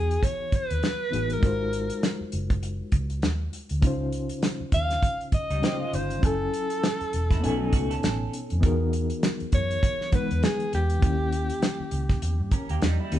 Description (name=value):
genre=lush 1970s-style soul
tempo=100 BPM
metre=4/4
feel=swing 58% on 16ths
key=G# minor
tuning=A4 = 439 Hz
part: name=clear alto saxophone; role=melody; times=0.0-12.8 s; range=G4 to E#5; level=-30 LUFS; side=equal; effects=none
part: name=reed electric piano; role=accompaniment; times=0.0-13.2 s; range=B2 to G#5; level=-31 LUFS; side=left 2 dB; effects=overdrive, fast tremolo
part: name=vintage muted fingered electric bass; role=bass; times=0.0-13.2 s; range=E1 to G2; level=-28 LUFS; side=equal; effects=none
part: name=damped 70s drum kit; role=drums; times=0.1-13.2 s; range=hi-hat, kick drum, snare drum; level=-25 LUFS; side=equal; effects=none
part: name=electric guitar through a small old amp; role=riff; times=5.5-8.6, 12.5-13.2 s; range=F#3 to A#4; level=-34 LUFS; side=right 4 dB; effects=harmonic tremolo
room=light reverb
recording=band playing live in one room, nothing above 10.4 kHz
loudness=-23 LUFS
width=side -12 dB against mid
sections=0.0-13.2 A section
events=none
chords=0.0 Emaj7; 1.4 G#13; 3.8 C#maj9; 6.2 F#m9; 7.4 B13; 8.6 Emaj9#11; 11.0 D#7b9